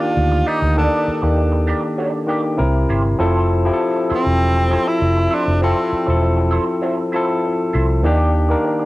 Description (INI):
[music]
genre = lush 1970s-style soul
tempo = 99 BPM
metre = 4/4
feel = straight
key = F major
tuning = A4 = 444 Hz
[part]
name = breathy tenor saxophone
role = melody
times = 0.0-6.2 s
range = C4 to F4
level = -21 LUFS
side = equal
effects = cassette tape, tape echo
[part]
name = barky tine electric piano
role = accompaniment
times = 0.0-8.9 s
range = C3 to Bb4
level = -18 LUFS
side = left 1 dB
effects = overdrive, cassette tape
[part]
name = electric guitar through a small old amp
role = riff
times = 0.0-8.8 s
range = Bb3 to D5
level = -27 LUFS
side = right 2 dB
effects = wah, analog chorus, cassette tape
[part]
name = vintage muted fingered electric bass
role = bass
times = 0.2-8.5 s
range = E1 to Eb2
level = -17 LUFS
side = equal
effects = none
[sound]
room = light reverb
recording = home recording on cassette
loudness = -15 LUFS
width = side -18 dB against mid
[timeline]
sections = 0.0-8.9 A section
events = none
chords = 0.0 Ebmaj7; 2.6 C7; 3.2 Fmaj7; 8.0 Ebmaj7